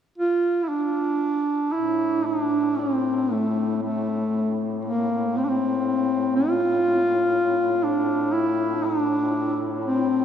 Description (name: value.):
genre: caucasian folk, Caucasian lament.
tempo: 59 BPM.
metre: 3/4.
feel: rubato.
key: A phrygian.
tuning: A4 = 440 Hz.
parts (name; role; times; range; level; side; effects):
mellow duduk; melody; 0.2-10.2 s; A3 to F4; -21 LUFS; equal; none.
warm duduk; drone; 1.7-10.2 s; A2; -31 LUFS; left 1 dB; none.
room: wet cathedral reverb, RT60 6.3 s.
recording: recorded in a church or concert hall.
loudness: -21 LUFS.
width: side -8 dB against mid.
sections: 0.0-1.7 A section; 1.7-10.2 B section.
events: none.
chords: none.